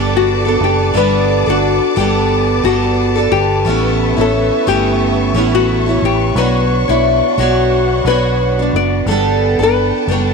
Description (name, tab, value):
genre	acoustic pop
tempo	89 BPM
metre	4/4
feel	swing 55% on 16ths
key	unclear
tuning	A4 = 440 Hz
part	nylon-string guitar	melody	0.0-10.3 s	E4 to D5	-17 LUFS	left 10 dB	none
part	picked steel-string acoustic guitar	accompaniment	0.0-10.3 s	G3 to C#5	-15 LUFS	right 3 dB	double-tracked left and right
part	warm studio string section	sustained chords	0.0-10.3 s	D4 to D6	-22 LUFS	left 2 dB	none
part	vintage muted fingered electric bass	bass	0.0-10.3 s	F#1 to B1	-18 LUFS	right 2 dB	none
room	light reverb, studio reverb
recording	none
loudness	-11 LUFS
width	side -4 dB against mid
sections	0.0-10.3 A section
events	none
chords	0.0 Gadd9; 3.7 Aadd9; 6.4 Bmadd9; 9.1 Gadd9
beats	0.27 | 0.95 1.62 2.30 2.98 | 3.65 4.33 5.01 5.68 | 6.36 7.04 7.72 8.39 | 9.07 9.75